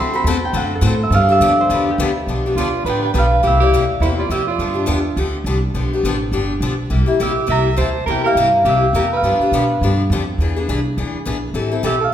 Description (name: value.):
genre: acoustic string swing (jazz manouche).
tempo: 207 BPM.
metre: 4/4.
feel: swing 58% on 8ths.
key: G mixolydian.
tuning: A4 = 436 Hz.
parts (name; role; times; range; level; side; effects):
Celtic harp; melody; 0.0-12.1 s; G4 to D6; -18 LUFS; right 1 dB; none.
picked steel-string acoustic guitar; accompaniment; 0.0-11.9 s; C3 to A4; -20 LUFS; left 3 dB; none.
upright bass; bass; 0.0-12.1 s; G1 to B2; -20 LUFS; equal; none.
warm soprano saxophone; second line; 2.6-12.1 s; E4 to E5; -22 LUFS; right 5 dB; none.
room: wet recital hall reverb, RT60 1.6 s.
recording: recorded in a church or concert hall.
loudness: -15 LUFS.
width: side -10 dB against mid.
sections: 0.0-2.3 A section; 2.3-12.1 B section.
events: harp solo 0.0-2.3.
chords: 0.0 D7; 1.1 G7; 3.4 C7; 4.6 G7; 6.9 C7; 9.2 G7; 10.4 E7; 11.6 Am7.